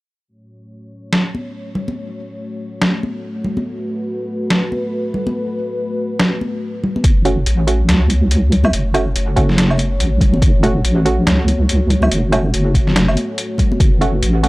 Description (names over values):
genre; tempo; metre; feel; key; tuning
deep dubstep; 142 BPM; 4/4; swing 59% on 16ths, half-time; F# minor; A4 = 439 Hz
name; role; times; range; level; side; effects
dark analog pad; sustained chords; 0.3-14.5 s; A3 to C#5; -24 LUFS; left 1 dB; chorus
trip hop sampler-style drum kit; drums; 1.1-14.5 s; hi-hat, snare drum, woodblock; -18 LUFS; equal; none
congas; percussion; 1.3-13.8 s; none; -23 LUFS; left 1 dB; none
deep soft wobble bass; bass; 7.0-14.5 s; F#1 to C#2; -15 LUFS; equal; chorus
electronic kick drum; drums; 7.0-13.9 s; none; -14 LUFS; equal; overdrive
filtered dub chord stab; stabs; 7.2-14.5 s; A3 to F#4; -22 LUFS; right 2 dB; chorus, dub echo
room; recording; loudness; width
little or no reverb; dry, gritty hardware recording, cassette tape; -14 LUFS; side -21 dB against mid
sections
0.3-7.0 A section; 7.0-14.5 B section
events
none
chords
0.3 F#m